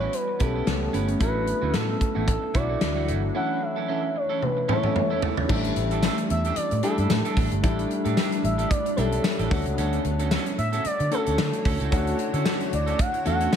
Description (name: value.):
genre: 1980s-style pop.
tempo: 112 BPM.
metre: 4/4.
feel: swing 55% on 16ths.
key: unclear.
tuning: A4 = 440 Hz.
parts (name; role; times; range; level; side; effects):
expressive synth lead; melody; 0.0-13.6 s; A4 to F#5; -29 LUFS; equal; chorus, tape echo.
dark baby grand piano; accompaniment; 0.0-13.6 s; E3 to A4; -30 LUFS; left 5 dB; none.
granular cloud pad; sustained chords; 0.0-13.6 s; D3 to C#5; -32 LUFS; right 1 dB; built-in reverb.
electric guitar at the edge of break-up; riff; 0.0-13.6 s; A3 to B4; -33 LUFS; right 9 dB; lush chorus.
vintage muted fingered electric bass; bass; 0.0-13.5 s; G1 to D3; -27 LUFS; equal; none.
modern studio drum kit; drums; 0.1-13.6 s; crash cymbal, hi-hat, kick drum, snare drum, tambourine, toms; -26 LUFS; equal; gated reverb.
room: light reverb, small room reverb.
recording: none.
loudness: -22 LUFS.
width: side -8 dB against mid.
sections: 0.0-5.5 A section; 5.5-13.6 B section.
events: drum fill 4.4-5.5.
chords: 0.0 Aadd9; 1.2 Dadd9/A; 3.3 A; 5.5 A7sus4; 9.5 Dmaj7.